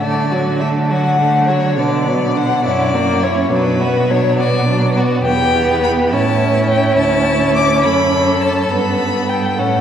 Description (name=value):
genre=quick classical-period movement for string quartet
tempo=69 BPM (dotted quarters)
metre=6/8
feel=rubato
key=D major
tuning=A4 = 440 Hz
part: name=rich violin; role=melody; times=0.0-9.8 s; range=B4 to D6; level=-19 LUFS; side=left 4 dB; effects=none
part: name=rich violin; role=second line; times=0.0-9.8 s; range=B3 to A4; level=-22 LUFS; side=left 1 dB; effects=none
part: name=clear viola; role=accompaniment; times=0.0-9.8 s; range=D3 to C#4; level=-17 LUFS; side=right 1 dB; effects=none
part: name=clear cello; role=bass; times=0.0-9.8 s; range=D2 to D3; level=-18 LUFS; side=right 2 dB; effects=none
room=wet church reverb, RT60 3.0 s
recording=none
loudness=-13 LUFS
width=side -9 dB against mid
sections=0.0-9.8 A section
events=none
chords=0.0 D; 1.8 Bm; 2.7 F#7; 3.5 Bm; 5.3 Em; 6.1 A; 7.0 D; 8.7 Gadd9